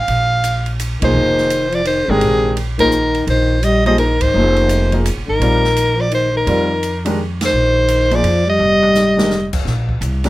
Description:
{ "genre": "modal jazz", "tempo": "169 BPM", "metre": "3/4", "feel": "swing 64% on 8ths", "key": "Bb mixolydian", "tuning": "A4 = 441 Hz", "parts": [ { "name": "bright soprano saxophone", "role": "melody", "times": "0.0-9.5 s", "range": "Ab4 to F5", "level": "-16 LUFS", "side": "equal", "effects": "none" }, { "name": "upright bass", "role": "bass", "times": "0.0-10.3 s", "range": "F1 to F2", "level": "-19 LUFS", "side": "equal", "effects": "none" }, { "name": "open jazz drum kit", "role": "drums", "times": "0.1-10.3 s", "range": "crash cymbal, hi-hat, kick drum, ride cymbal, snare drum, toms", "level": "-26 LUFS", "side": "right 1 dB", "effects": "none" }, { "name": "breathy trombone", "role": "second line", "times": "1.0-9.5 s", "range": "C3 to G3", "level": "-19 LUFS", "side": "left 2 dB", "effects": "none" }, { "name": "warm grand piano", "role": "accompaniment", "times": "1.0-10.3 s", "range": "Eb3 to G5", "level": "-19 LUFS", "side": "equal", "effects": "none" } ], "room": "moderate small room reverb, RT60 0.5 s", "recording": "none", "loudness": "-13 LUFS", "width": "side -17 dB against mid", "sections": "0.0-9.7 A section", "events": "band accent 1.0, 4.2, 7.4; drum fill 8.6-9.3", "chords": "0.0 Bb13sus4; 9.7 Bbsus2", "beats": "| 0.09 0.45 0.80 | 1.15 1.51 1.86 | 2.22 2.57 2.93 | 3.28 3.64 3.99 | 4.34 4.70 5.05 | 5.41 5.76 6.12 | 6.47 6.83 7.18 | 7.54 7.89 8.24 | 8.60 8.95 9.31 | 9.66 10.02" }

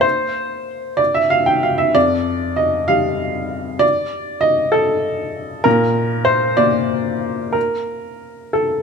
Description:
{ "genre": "neoclassical minimalist piano", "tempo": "64 BPM (dotted quarters)", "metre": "6/8", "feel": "uneven beats, rubato", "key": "unclear", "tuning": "A4 = 438 Hz", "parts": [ { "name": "clear upright piano", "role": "solo", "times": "0.0-8.8 s", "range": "F2 to G5", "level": "-16 LUFS", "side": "equal", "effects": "none" } ], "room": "light reverb", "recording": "close, detailed microphones", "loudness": "-15 LUFS", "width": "side -5 dB against mid", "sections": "0.0-8.8 A section", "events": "none", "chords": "0.0 C7; 1.9 Fadd9; 5.7 N.C.", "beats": "| 0.04 0.99 | 1.95 2.89 | 3.82 4.74 | 5.65 6.59 | 7.55 8.54" }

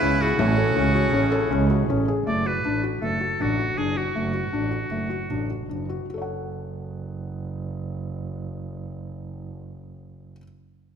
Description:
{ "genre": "contemporary instrumental, chamber music in an uneven meter", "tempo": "147-162 BPM", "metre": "5/4", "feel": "straight", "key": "F# minor", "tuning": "A4 = 440 Hz", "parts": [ { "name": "clear oboe", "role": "melody", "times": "0.0-5.7 s", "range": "F#4 to D5", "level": "-27 LUFS", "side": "right 1 dB", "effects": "none" }, { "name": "rich viola", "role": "second line", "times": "0.0-2.1 s", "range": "C#4 to E4", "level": "-29 LUFS", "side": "right 1 dB", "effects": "none" }, { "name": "mellow woodwind section", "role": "sustained chords", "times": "0.0-2.3 s", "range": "C#3 to G#4", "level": "-31 LUFS", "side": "left 2 dB", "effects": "none" }, { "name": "felt-muted upright piano", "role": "arpeggios", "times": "0.0-10.4 s", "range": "A3 to F#5", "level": "-26 LUFS", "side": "left 4 dB", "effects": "none" }, { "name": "warm double bass", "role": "bass", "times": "0.0-10.3 s", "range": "F#1 to C#2", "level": "-27 LUFS", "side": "right 4 dB", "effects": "none" }, { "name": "frame drum", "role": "percussion", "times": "0.0-1.8 s", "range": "none", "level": "-31 LUFS", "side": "left 5 dB", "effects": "none" } ], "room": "moderate scoring stage reverb, RT60 1.7 s", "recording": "minimal, uncompressed stereo recording", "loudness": "-22 LUFS", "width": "side -7 dB against mid", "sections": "0.0-2.3 A section; 2.3-6.1 B section; 6.1-10.1 C section", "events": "slowing down 3.0-6.1", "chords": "0.4 F#m7/A; 2.3 D/F#; 6.1 F#m", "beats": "0.02 | 0.39 0.76 1.14 1.51 1.90 | 2.27 2.65 3.02 3.40 3.77 | 4.15 4.53 4.91 5.29 5.69 | 6.09 6.49 6.89 7.29 7.69 | 8.08 8.48 8.88 9.28 9.68" }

